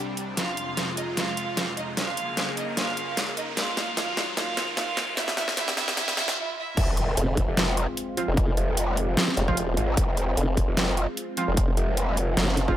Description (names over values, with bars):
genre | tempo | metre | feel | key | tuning
heavy wobble dubstep | 150 BPM | 4/4 | swing 54% on 16ths, half-time | F phrygian | A4 = 440 Hz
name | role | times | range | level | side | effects
warm chamber violin section | melody | 0.0-6.8 s | G3 to F5 | -31 LUFS | right 3 dB | dub echo
supersaw pad | sustained chords | 0.0-12.8 s | C2 to Ab4 | -34 LUFS | equal | phaser, sidechain pumping, low-pass filter
riser, swell and impact | sound effects | 0.0-8.4 s | none | -34 LUFS | equal | none
dubstep drum kit | drums | 0.2-12.7 s | crash cymbal, hi-hat, snare drum | -27 LUFS | equal | overdrive
growl bass | bass | 6.8-12.4 s | F1 to Ab1 | -25 LUFS | equal | chorus, overdrive
electronic kick drum | drums | 6.8-12.8 s | none | -26 LUFS | equal | overdrive
formant-sweep wobble bass | bass | 7.2-12.8 s | F1 to Gb1 | -24 LUFS | equal | chorus, overdrive
orchestra-hit-like synth stab | stabs | 8.2-12.8 s | F3 to F4 | -31 LUFS | right 3 dB | built-in reverb, dub echo
room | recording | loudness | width
light reverb, digital ambience | high-pass filter | -23 LUFS | side -12 dB against mid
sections
0.0-6.8 A section; 6.8-12.8 B section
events
build-up 0.0-6.8; riser 0.0-6.4; drum fill 0.4-6.4; swell 6.0-6.8; break 6.4-6.8; drop 6.8-12.8; impact 6.8-8.4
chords
0.4 Fm; 2.0 Gbadd9; 3.6 Ebm; 5.2 Csus2; 6.8 Fm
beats
| 0.37 0.77 1.17 1.57 | 1.97 2.37 2.77 3.17 | 3.57 3.97 4.37 4.77 | 5.17 5.57 5.97 6.37 | 6.77 7.17 7.57 7.97 | 8.37 8.77 9.17 9.57 | 9.97 10.37 10.77 11.17 | 11.57 11.97 12.37